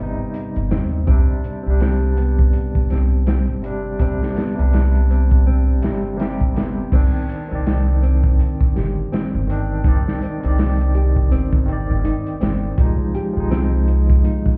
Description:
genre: trip hop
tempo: 82 BPM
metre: 4/4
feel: swing 59% on 16ths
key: C harmonic minor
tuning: A4 = 440 Hz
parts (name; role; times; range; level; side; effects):
- barky tine electric piano; accompaniment; 0.0-14.6 s; C3 to D5; -27 LUFS; equal; tremolo, vintage 12-bit sampler grit, tape echo
- nylon-string guitar; arpeggios; 0.0-14.6 s; B3 to G4; -32 LUFS; equal; vintage 12-bit sampler grit, tape echo
- upright bass; bass; 0.0-14.2 s; G1 to Eb2; -20 LUFS; equal; none
- crunchy breakbeat drum kit; drums; 0.3-14.6 s; crash cymbal, hi-hat, kick drum, snare drum; -22 LUFS; equal; none
room: small room ambience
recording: heard muffled through a wall, club reverb, vinyl crackle, EQ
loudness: -18 LUFS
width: mono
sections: 0.0-6.9 A section; 6.9-14.6 B section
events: none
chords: 0.0 Cm; 1.1 Gsus4; 6.9 Cmadd9; 12.8 Fm7

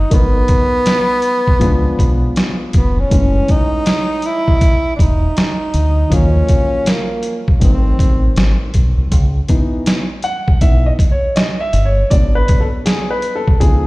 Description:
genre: hip hop, jazz-hop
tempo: 80 BPM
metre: 4/4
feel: swing 63% on 16ths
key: C# minor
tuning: A4 = 440 Hz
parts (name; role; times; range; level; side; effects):
- breathy tenor saxophone; melody; 0.0-8.3 s; A#3 to E4; -18 LUFS; right 1 dB; none
- dark grand piano; accompaniment; 0.0-13.9 s; D#3 to F#5; -20 LUFS; left 1 dB; none
- deep dub fingered electric bass; bass; 0.0-13.9 s; E1 to D#2; -15 LUFS; equal; none
- trip hop sampler-style drum kit; drums; 0.1-13.8 s; hi-hat, kick drum, snare drum; -14 LUFS; equal; none
room: digital ambience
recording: played on a big sound system in a bare room, stone room reverb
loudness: -12 LUFS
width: side -20 dB against mid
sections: 0.0-9.1 A section; 9.1-13.9 B section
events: grand piano solo 9.1-13.9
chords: 0.1 G#m9; 1.6 C#7b9; 3.1 F#m7 (rootless); 6.1 D#m7; 7.6 G#7b9; 9.1 C#m9; 12.1 G#m7b5

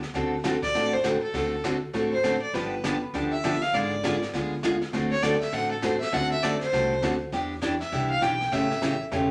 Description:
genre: country, western swing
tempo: 200 BPM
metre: 4/4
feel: swing 62% on 8ths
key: D mixolydian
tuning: A4 = 440 Hz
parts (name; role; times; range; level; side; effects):
- upright bass; bass; 0.0-9.3 s; E1 to E2; -39 LUFS; equal; none
- jazz brush drum kit; drums; 0.0-9.3 s; brushed snare drum, hi-hat, kick drum, snare drum; -38 LUFS; equal; none
- picked steel-string acoustic guitar; accompaniment; 0.1-9.3 s; C#3 to A4; -29 LUFS; equal; none
- clear fiddle; second line; 0.6-9.0 s; A4 to G5; -30 LUFS; equal; none
room: wet studio reverb, RT60 0.6 s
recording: none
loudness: -26 LUFS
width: mono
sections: 0.0-9.3 A section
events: fiddle solo 0.0-9.3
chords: 0.1 D7; 2.5 G7; 3.7 G#dim7; 4.9 D7; 7.3 Em7; 8.5 A7

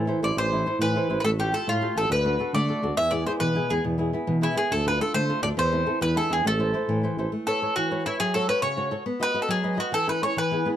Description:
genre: italian folk, Italian serenade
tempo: 138 BPM (dotted quarters)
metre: 6/8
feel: straight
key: A harmonic minor, A major from 7.3 s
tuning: A4 = 438 Hz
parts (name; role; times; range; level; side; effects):
- mandolin; melody; 0.0-10.7 s; E4 to E5; -25 LUFS; equal; none
- flamenco guitar; accompaniment; 0.0-10.8 s; B2 to D#5; -28 LUFS; equal; none
- mellow tuba; bass; 0.0-7.3 s; A1 to E3; -27 LUFS; right 1 dB; none
room: light reverb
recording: close, detailed microphones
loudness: -22 LUFS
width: side -10 dB against mid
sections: 0.0-7.3 A section; 7.3-10.8 B section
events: none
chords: 0.0 Am; 1.2 Fadd9/A; 2.1 D; 3.0 E; 4.7 Dm; 5.6 Am/E; 6.0 E7; 6.4 Am; 7.3 Aadd9; 8.2 F#m; 9.1 B; 9.9 A/E

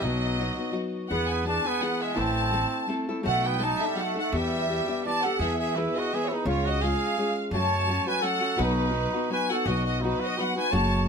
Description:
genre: mexican folk, mariachi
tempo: 168 BPM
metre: 3/4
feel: swing 54% on 8ths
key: E minor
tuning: A4 = 440 Hz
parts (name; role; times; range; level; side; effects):
- rich studio violin section; melody; 0.0-11.1 s; B4 to A5; -28 LUFS; left 1 dB; tape echo
- clear trumpet; second line; 0.0-11.1 s; F#3 to D5; -31 LUFS; right 6 dB; none
- nylon-string guitar; accompaniment; 0.0-11.1 s; F#2 to A4; -29 LUFS; left 2 dB; none
- upright bass; bass; 0.0-11.1 s; F#1 to F#2; -30 LUFS; equal; none
room: light reverb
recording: none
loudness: -24 LUFS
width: side -6 dB against mid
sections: 0.0-5.4 A section; 5.4-11.1 B section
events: none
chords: 0.0 B; 1.1 E7; 2.2 Am; 3.2 B7; 4.3 Em7; 5.4 E; 6.5 C#; 7.5 F#m; 8.6 B

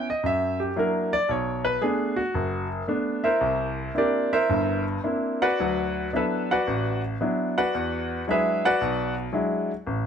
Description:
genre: solo jazz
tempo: 113 BPM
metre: 4/4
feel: swing 68% on 8ths, rubato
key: unclear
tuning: A4 = 440 Hz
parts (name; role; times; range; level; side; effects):
- clear grand piano; solo; 0.0-10.1 s; F#1 to F#5; -23 LUFS; equal; none
room: moderate studio reverb, RT60 0.8 s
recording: none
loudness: -23 LUFS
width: side -7 dB against mid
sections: 0.0-10.1 A section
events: grand piano solo 0.0-10.1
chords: 0.2 F#aug7; 1.3 Bm7; 3.4 C9; 5.6 D69; 7.7 E9

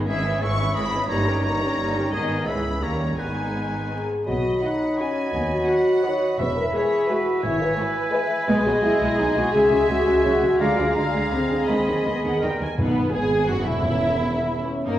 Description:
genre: classical, dramatic, fast romantic movement for symphony orchestra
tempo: 171 BPM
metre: 3/4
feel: straight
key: G# minor, B major from 4.3 s, G# minor from 8.5 s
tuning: A4 = 440 Hz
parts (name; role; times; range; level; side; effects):
- rich symphonic violin section; second line; 0.0-15.0 s; A#3 to B5; -31 LUFS; left 1 dB; none
- rich studio viola section; accompaniment; 0.0-15.0 s; D#3 to B4; -28 LUFS; right 2 dB; none
- clear French horn section; sustained chords; 0.0-15.0 s; G3 to E5; -24 LUFS; left 1 dB; none
- rich studio cello section; bass; 0.0-15.0 s; C#2 to D#3; -30 LUFS; right 1 dB; none
- rich studio double bass section; bass; 0.0-15.0 s; E1 to D#2; -30 LUFS; right 1 dB; none
- clear symphonic violin section; melody; 0.1-15.0 s; G#4 to C#6; -32 LUFS; left 1 dB; none
- bright oboe; second line; 0.1-12.6 s; G#4 to B5; -30 LUFS; equal; none
- clear clarinet; second line; 4.3-12.5 s; D#5 to E#5; -30 LUFS; equal; none
- mellow bassoon; accompaniment; 4.3-12.6 s; E3 to G#3; -28 LUFS; right 1 dB; none
- timpani; percussion; 12.8-14.3 s; G#2; -29 LUFS; equal; none
room: wet recital hall reverb, RT60 1.4 s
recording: recorded in a church or concert hall, vinyl crackle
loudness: -20 LUFS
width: side -12 dB against mid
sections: 0.0-4.3 A section; 4.3-12.8 B section; 12.8-15.0 A section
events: none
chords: 0.1 C#m/G#; 1.1 D#7/G; 2.1 G#m; 2.5 C#m7; 2.8 D#7; 3.2 G#m; 4.3 B; 5.3 B/D#; 6.4 E; 7.4 E/G#; 8.5 G#m/B; 9.5 C#m; 10.6 A#7/D; 11.7 G#m/D#; 12.4 D#; 12.8 G#m; 13.8 C#m/E

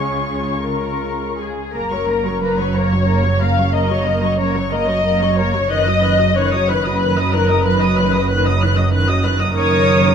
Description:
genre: classical, slow romantic movement for string orchestra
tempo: 51-64 BPM (dotted quarters)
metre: 12/8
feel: rubato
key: F# major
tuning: A4 = 439 Hz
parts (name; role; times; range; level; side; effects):
- muted symphonic violin section; melody; 0.0-10.1 s; A#5 to F#6; -25 LUFS; left 2 dB; none
- muted symphonic violin section; second line; 0.0-10.1 s; Ab4 to E#5; -19 LUFS; left 4 dB; none
- muted symphonic viola section; accompaniment; 0.0-10.1 s; D#3 to D#5; -22 LUFS; right 1 dB; none
- muted symphonic cello section; bass; 0.0-10.1 s; F#2 to Db3; -21 LUFS; right 2 dB; none
- muted symphonic double bass section; bass; 0.0-10.1 s; F#1 to Db2; -21 LUFS; right 3 dB; none
room: moderate recital hall reverb, RT60 1.8 s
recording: none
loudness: -15 LUFS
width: side -7 dB against mid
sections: 0.0-1.7 A section; 1.7-10.1 B section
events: none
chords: 0.0 Db; 1.7 F#; 5.7 B/F#; 9.6 Ebm7/Gb

